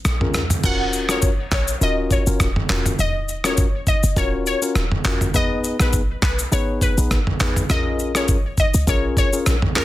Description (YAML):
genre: afrobeats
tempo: 102 BPM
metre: 4/4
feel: swing 55% on 16ths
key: Eb minor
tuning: A4 = 440 Hz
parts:
  - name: short 808-style bass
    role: bass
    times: 0.0-9.8 s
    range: Eb1 to Db2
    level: -22 LUFS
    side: equal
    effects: none
  - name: dusty soul sampler-style drum kit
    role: drums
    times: 0.1-9.8 s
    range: crash cymbal, handclaps, kick drum, rim click, shaker, toms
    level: -20 LUFS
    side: equal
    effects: soft clipping on snare
  - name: mellow tine electric piano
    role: accompaniment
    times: 0.2-9.8 s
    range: Cb4 to Cb5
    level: -25 LUFS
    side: left 3 dB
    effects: none
  - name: glassy wavetable pluck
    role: melody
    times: 0.7-9.8 s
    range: Bb4 to Gb5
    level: -25 LUFS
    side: left 2 dB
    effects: chorus, tape echo
room: little or no reverb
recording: dense, heavily limited modern master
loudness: -17 LUFS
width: side -15 dB against mid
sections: 0.6-9.8 A section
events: none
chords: 0.0 Bbm7; 0.6 Ebm7; 5.3 Abm; 7.7 Bbm7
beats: 0.05 | 0.64 1.23 1.81 2.40 | 2.99 3.58 4.17 4.75 | 5.34 5.93 6.52 7.11 | 7.70 8.29 8.87 9.46